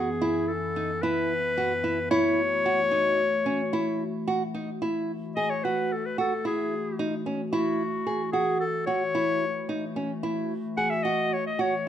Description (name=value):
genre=contemporary instrumental, chamber music in an uneven meter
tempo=111 BPM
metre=5/4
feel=straight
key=F# dorian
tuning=A4 = 441 Hz
part: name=clear clarinet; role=melody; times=0.0-11.9 s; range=F#4 to F#5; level=-27 LUFS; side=left 3 dB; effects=none
part: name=warbly tape-like pad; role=sustained chords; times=0.0-11.9 s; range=F#2 to G#5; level=-33 LUFS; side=left 1 dB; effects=chorus, built-in reverb
part: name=nylon-string guitar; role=arpeggios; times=0.0-11.7 s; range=C#4 to G#4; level=-28 LUFS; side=right 2 dB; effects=none
room=light reverb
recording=close, detailed microphones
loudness=-24 LUFS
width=side -10 dB against mid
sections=0.0-4.8 A section; 4.8-11.9 B section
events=none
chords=0.0 E/F#; 2.1 F#m7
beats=0.48 1.02 1.56 | 2.11 2.65 3.19 3.73 4.27 | 4.81 5.36 5.90 6.44 6.98 | 7.52 8.07 8.61 9.15 9.70 | 10.24 10.78 11.32 11.87